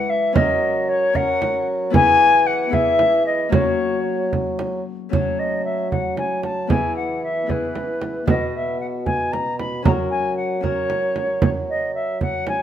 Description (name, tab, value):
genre	classical, renaissance-style consort dance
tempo	76 BPM (dotted quarters)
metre	6/8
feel	straight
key	unclear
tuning	A4 = 440 Hz
part	silver concert flute	melody	0.0-12.6 s	B4 to B5	-20 LUFS	left 2 dB	none
part	Celtic harp	accompaniment	0.0-12.6 s	B2 to B4	-27 LUFS	left 6 dB	none
part	mellow bassoon	bass	0.0-12.6 s	B2 to F#3	-25 LUFS	right 2 dB	none
part	frame drum	percussion	0.4-12.6 s	none	-22 LUFS	right 4 dB	none
room	moderate stone room reverb, RT60 1.2 s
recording	none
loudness	-18 LUFS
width	side -10 dB against mid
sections	0.0-5.1 A section; 5.1-12.6 B section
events	none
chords	0.4 F#; 1.9 E; 3.5 F#; 5.1 F#m; 6.7 E; 8.3 B5; 9.9 F#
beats	| 0.35 1.15 | 1.94 2.73 | 3.52 4.32 | 5.12 5.91 | 6.71 7.50 | 8.28 9.07 | 9.86 10.64 | 11.43 12.21